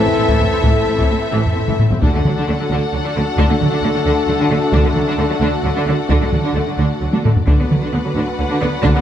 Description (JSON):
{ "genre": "cinematic, epic orchestral film score", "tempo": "132 BPM", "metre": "3/4", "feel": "straight", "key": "unclear", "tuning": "A4 = 439 Hz", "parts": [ { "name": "warm symphonic violin section", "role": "melody", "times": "0.0-9.0 s", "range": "E5 to F#5", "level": "-27 LUFS", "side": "left 4 dB", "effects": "none" }, { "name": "rich studio violin section", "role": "second line", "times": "0.0-9.0 s", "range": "A4 to B4", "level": "-26 LUFS", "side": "left 8 dB", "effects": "none" }, { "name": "bright trombone section", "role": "sustained chords", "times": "0.0-9.0 s", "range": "D3 to A3", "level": "-29 LUFS", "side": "right 4 dB", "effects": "none" }, { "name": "dark French horn section", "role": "sustained chords", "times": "0.0-9.0 s", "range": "C4 to F#4", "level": "-27 LUFS", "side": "left 6 dB", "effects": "none" }, { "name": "warm symphonic string section", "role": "sustained chords", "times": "0.0-9.0 s", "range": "C4 to E5", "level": "-25 LUFS", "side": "left 1 dB", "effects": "none" }, { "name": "mellow trumpet section", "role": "stabs", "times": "0.0-9.0 s", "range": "A4 to B4", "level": "-26 LUFS", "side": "equal", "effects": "none" }, { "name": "taiko ensemble", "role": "drums", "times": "0.1-9.0 s", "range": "none", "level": "-17 LUFS", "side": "equal", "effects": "none" }, { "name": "rich symphonic viola section", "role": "accompaniment", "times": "0.2-9.0 s", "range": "E3 to D4", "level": "-24 LUFS", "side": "equal", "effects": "none" }, { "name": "rich symphonic cello section", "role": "bass", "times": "0.2-9.0 s", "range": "A2 to D3", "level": "-21 LUFS", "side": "right 2 dB", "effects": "none" }, { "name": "warm symphonic double bass section", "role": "bass", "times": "0.2-8.9 s", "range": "A1 to D2", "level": "-22 LUFS", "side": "right 2 dB", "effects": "none" } ], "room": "moderate recital hall reverb, RT60 1.4 s", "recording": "dark, warm production", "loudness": "-14 LUFS", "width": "side -10 dB against mid", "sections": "0.0-2.0 A section; 2.0-9.0 B section", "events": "drum fill 1.7-2.0, 7.1-7.5", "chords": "0.0 Am; 2.0 D; 7.5 Bm/D", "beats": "0.17 | 0.63 1.10 1.56 | 2.02 2.48 2.93 | 3.38 3.83 4.28 | 4.73 5.18 5.64 | 6.10 6.56 7.02 | 7.48 7.93 8.39 | 8.85" }